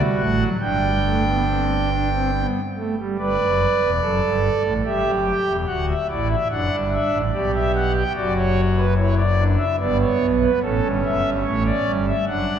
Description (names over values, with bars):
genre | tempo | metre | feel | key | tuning
classical, baroque-style 4-part fugue for pipe organ | 72 BPM | 3/4 | straight | G major | A4 = 439 Hz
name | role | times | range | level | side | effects
pipe organ, foundations | solo | 0.0-12.6 s | D1 to G5 | -18 LUFS | right 1 dB | none
room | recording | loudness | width
wet church reverb, RT60 3.3 s | none | -18 LUFS | side -8 dB against mid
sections
0.0-3.2 A section; 3.2-12.6 B section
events
none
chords
0.0 D (rootless); 0.6 G; 4.9 Emadd9; 5.7 D; 7.3 G/B; 8.1 D/F#; 9.8 G; 10.6 A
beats
| 0.60 1.47 2.33 | 3.19 4.03 4.86 | 5.68 6.51 7.33 | 8.15 8.96 9.79 | 10.62 11.45 12.28